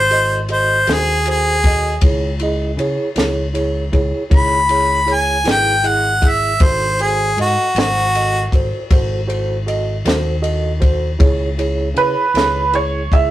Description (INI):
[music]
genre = slow blues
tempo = 52 BPM (dotted quarters)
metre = 12/8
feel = straight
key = C# minor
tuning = A4 = 439 Hz
[part]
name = bright harmonica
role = melody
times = 0.0-8.5 s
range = F#4 to B5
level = -15 LUFS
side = equal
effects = none
[part]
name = fingered electric bass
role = bass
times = 0.0-13.3 s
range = G#1 to C#3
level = -21 LUFS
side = equal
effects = none
[part]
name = tine electric piano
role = accompaniment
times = 0.1-13.3 s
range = E4 to E5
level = -22 LUFS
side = right 2 dB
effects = medium tremolo
[part]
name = compact cocktail drum kit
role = drums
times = 0.1-13.3 s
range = kick drum, ride cymbal, snare drum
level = -18 LUFS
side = equal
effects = none
[part]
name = clear upright piano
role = second line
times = 12.0-13.3 s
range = B4 to E5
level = -15 LUFS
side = right 4 dB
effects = none
[sound]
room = moderate small room reverb, RT60 0.5 s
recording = rough rehearsal-room recording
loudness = -14 LUFS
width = side -14 dB against mid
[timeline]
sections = 0.0-11.2 A section; 11.2-13.3 A section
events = harmonica solo 0.0-11.2; upright piano solo 11.2-13.3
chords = 0.0 G#7b9; 2.0 C#m; 6.6 G#7b9; 11.2 C#m